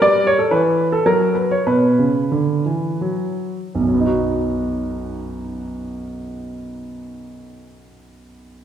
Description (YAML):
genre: classical, baroque-style suite movement for grand piano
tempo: 79-122 BPM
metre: 3/4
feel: rubato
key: unclear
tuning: A4 = 440 Hz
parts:
  - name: warm baby grand piano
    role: solo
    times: 0.0-8.6 s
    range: B1 to D5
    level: -17 LUFS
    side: right 1 dB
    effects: none
room: wet recital hall reverb, RT60 1.7 s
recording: recorded in a church or concert hall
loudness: -16 LUFS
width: side -9 dB against mid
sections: 0.0-3.7 A section; 3.7-8.2 B section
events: slowing down 0.0-3.7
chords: 0.0 N.C.; 1.7 Bm; 3.7 B